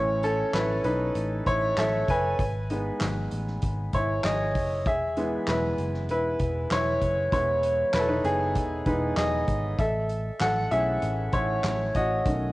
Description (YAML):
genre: piano-driven pop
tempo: 97 BPM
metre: 4/4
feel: straight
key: unclear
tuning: A4 = 435 Hz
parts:
  - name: clear upright piano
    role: accompaniment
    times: 0.0-12.5 s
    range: D#3 to G#5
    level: -25 LUFS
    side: equal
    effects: cassette tape
  - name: vintage muted picked electric bass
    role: bass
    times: 0.0-12.5 s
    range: E1 to B1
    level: -31 LUFS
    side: equal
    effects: none
  - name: soft-mallet drum kit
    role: drums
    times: 0.2-12.4 s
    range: handclaps, hi-hat, kick drum, snare drum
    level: -31 LUFS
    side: equal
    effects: cassette tape
room: light reverb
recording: home recording on cassette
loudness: -24 LUFS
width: side -19 dB against mid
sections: 0.0-12.5 A section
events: upright piano solo 0.0-12.5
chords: 0.0 A; 4.9 E; 9.8 A